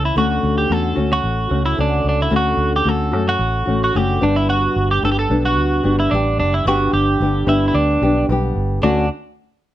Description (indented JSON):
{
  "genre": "acoustic pop",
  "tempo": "111 BPM",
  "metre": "4/4",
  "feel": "straight",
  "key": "D major",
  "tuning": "A4 = 440 Hz",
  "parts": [
    { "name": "twelve-string electric guitar", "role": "melody", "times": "0.0-9.1 s", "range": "D4 to A4", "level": "-20 LUFS", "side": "right 2 dB", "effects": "none" },
    { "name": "nylon-string guitar", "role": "accompaniment", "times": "0.0-9.1 s", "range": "G2 to G4", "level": "-19 LUFS", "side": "left 2 dB", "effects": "none" },
    { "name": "vintage muted fingered electric bass", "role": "bass", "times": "0.0-9.1 s", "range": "F#1 to F#2", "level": "-20 LUFS", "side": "right 1 dB", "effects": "none" }
  ],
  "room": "light reverb",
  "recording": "none",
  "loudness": "-15 LUFS",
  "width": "side -13 dB against mid",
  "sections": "0.2-8.8 A section",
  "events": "none",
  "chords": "0.2 Dmaj7; 4.2 G; 8.8 Dmaj7",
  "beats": "| 0.16 0.70 1.24 1.78 | 2.33 2.87 3.41 3.95 | 4.50 5.04 5.58 6.12 | 6.66 7.21 7.75 8.29 | 8.83"
}